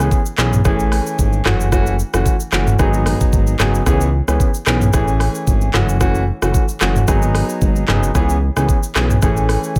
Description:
afrobeats; 112 BPM; 4/4; swing 55% on 16ths; C# minor; A4 = 435 Hz
warm baby grand piano; accompaniment; 0.0-9.8 s; E3 to G#4; -22 LUFS; equal
fat analog bass; bass; 0.0-9.8 s; F#1 to C#2; -20 LUFS; equal
afro-pop drum kit; drums; 0.1-9.8 s; handclaps, hi-hat, kick drum, rim click, shaker, toms; -19 LUFS; equal
digital ambience; -16 LUFS; mono
0.0-9.8 A section
0.0 C#m7; 0.7 Amaj7; 1.5 F#m7; 2.8 G#m7; 3.9 C#m7; 4.9 Amaj7; 5.7 F#m7; 7.1 G#m7; 8.2 C#m7; 9.2 Amaj7

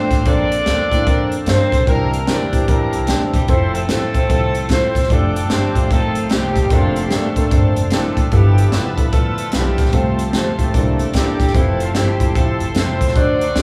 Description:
uptempo gospel; 149 BPM; 4/4; swing 62% on 8ths; F major; A4 = 440 Hz
clear horn section; melody; 0.0-13.6 s; E3 to D5; -24 LUFS; equal; slapback echo
warm upright piano; accompaniment; 0.0-13.6 s; G2 to C5; -25 LUFS; equal
bright tonewheel organ; sustained chords; 0.0-13.6 s; D3 to E5; -29 LUFS; equal; slow rotary speaker, overdrive, chorus vibrato
upright bass; bass; 0.0-13.6 s; E1 to G2; -23 LUFS; equal
crisp fusion drum kit; drums; 0.1-13.6 s; hi-hat, kick drum, snare drum; -20 LUFS; equal
dark studio string section; sustained chords; 5.1-13.6 s; Eb4 to D6; -34 LUFS; equal
moderate large studio reverb, RT60 1.2 s; band playing live in one room, studio ambience; -16 LUFS; mono
0.0-13.6 A section
0.3 Bbmaj9; 1.9 C9; 3.5 Fmaj7; 5.1 F69; 5.9 F7/A; 6.7 Bbmaj9/F; 8.3 G13; 9.9 F/C; 10.7 C13; 11.5 Fmaj7

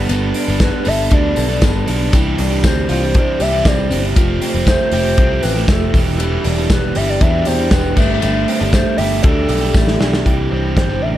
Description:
jangly indie pop; 118 BPM; 4/4; straight; C major; A4 = 440 Hz
overdriven semi-hollow guitar; accompaniment; 0.0-11.2 s; E2 to A4; -21 LUFS; right 5 dB
electric guitar through a small old amp; arpeggios; 0.0-11.2 s; E3 to A4; -22 LUFS; left 2 dB
picked electric bass; bass; 0.0-11.2 s; E1 to C3; -19 LUFS; equal
modern studio drum kit; drums; 0.1-10.9 s; crash cymbal, hi-hat, kick drum, ride cymbal, snare drum; -17 LUFS; equal
tambourine; percussion; 0.1-10.1 s; -35 LUFS; left 8 dB
hollow clarinet-like synth lead; melody; 0.6-11.2 s; A4 to E5; -22 LUFS; left 1 dB; chorus, tape echo
light reverb, small room ambience; dark, warm production; -13 LUFS; side -13 dB against mid
0.0-10.3 A section
drum fill 9.7-10.3
0.0 Gadd9; 2.1 Cadd9; 4.2 Fadd9; 5.9 Em7; 8.0 Gsus2; 10.3 Cadd9

